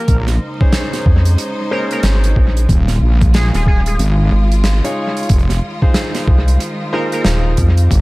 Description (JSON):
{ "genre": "glitch hop", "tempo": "92 BPM", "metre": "4/4", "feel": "swing 61% on 16ths", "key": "F minor", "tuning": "A4 = 436 Hz", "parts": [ { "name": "sync lead", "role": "melody", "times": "0.0-7.2 s", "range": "Ab4 to Bb4", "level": "-25 LUFS", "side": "right 1 dB", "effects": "lush chorus, analog delay" }, { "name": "clear studio string section", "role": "sustained chords", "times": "0.0-8.0 s", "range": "Db3 to C5", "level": "-25 LUFS", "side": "equal", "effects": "sidechain pumping" }, { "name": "wobble bass", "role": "bass", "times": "0.1-8.0 s", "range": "Eb1 to Bb1", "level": "-13 LUFS", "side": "equal", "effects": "chorus, tube saturation" }, { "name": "electronic kick drum", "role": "drums", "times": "0.1-8.0 s", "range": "none", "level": "-13 LUFS", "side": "equal", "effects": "overdrive" }, { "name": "gated 80s drum kit", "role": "drums", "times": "0.1-8.0 s", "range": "hi-hat, snare drum", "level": "-21 LUFS", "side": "right 1 dB", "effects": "analog delay" }, { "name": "bright concert grand piano", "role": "stabs", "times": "0.6-7.9 s", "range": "Db4 to Db5", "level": "-23 LUFS", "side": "left 1 dB", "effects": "sidechain pumping, analog delay" }, { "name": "rubbery square bass", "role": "bass", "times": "1.1-7.9 s", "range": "Eb1 to F2", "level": "-13 LUFS", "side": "equal", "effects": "tube saturation" } ], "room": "studio ambience", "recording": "echo-heavy mix, vinyl crackle", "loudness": "-12 LUFS", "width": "side -22 dB against mid", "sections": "0.0-8.0 A section", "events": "none", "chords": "0.1 Bbm11; 2.7 Eb9sus4; 5.3 Fm7" }